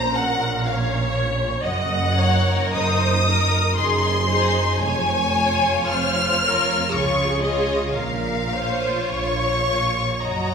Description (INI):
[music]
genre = classical, slow romantic movement for string orchestra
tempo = 49-62 BPM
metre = 3/4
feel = rubato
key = Db major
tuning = A4 = 440 Hz
[part]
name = rich studio violin section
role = melody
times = 0.0-10.5 s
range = Eb5 to F6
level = -22 LUFS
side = left 2 dB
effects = none
[part]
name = rich studio violin section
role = second line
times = 0.0-10.5 s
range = Db4 to Db5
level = -26 LUFS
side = left 2 dB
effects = none
[part]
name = rich studio viola section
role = accompaniment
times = 0.0-10.5 s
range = Ab4 to Eb5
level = -26 LUFS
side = right 1 dB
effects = none
[part]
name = rich studio double bass section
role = bass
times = 0.0-10.5 s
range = F1 to Db2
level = -26 LUFS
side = right 2 dB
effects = none
[part]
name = warm studio cello section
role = bass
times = 0.0-10.5 s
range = F2 to Db3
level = -27 LUFS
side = right 3 dB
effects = none
[sound]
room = wet recital hall reverb, RT60 1.5 s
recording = recorded in a church or concert hall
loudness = -18 LUFS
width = side -6 dB against mid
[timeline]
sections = 0.0-10.5 A section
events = none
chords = 0.0 Bbm; 1.6 Ebm/Gb; 3.8 Ab7/Gb; 4.8 Db/F; 6.9 Db; 7.9 Bbm